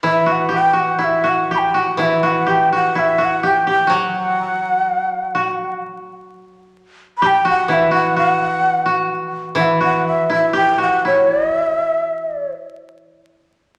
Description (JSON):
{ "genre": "japanese traditional, Japanese chamber music", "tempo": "62 BPM", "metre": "4/4", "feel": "rubato", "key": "E minor", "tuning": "A4 = 440 Hz", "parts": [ { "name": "koto", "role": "second line", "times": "0.0-13.3 s", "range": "E4 to G4", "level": "-22 LUFS", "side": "equal", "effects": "none" }, { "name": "koto", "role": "accompaniment", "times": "0.0-12.5 s", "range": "E3 to F#3", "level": "-26 LUFS", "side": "equal", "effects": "none" }, { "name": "breathy reedy shakuhachi", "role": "melody", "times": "0.1-12.5 s", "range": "E5 to B5", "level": "-19 LUFS", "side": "equal", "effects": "none" } ], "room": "wet recital hall reverb, RT60 1.6 s", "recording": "vinyl crackle", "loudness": "-17 LUFS", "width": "mono", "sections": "0.0-13.8 A section", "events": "none", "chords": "none" }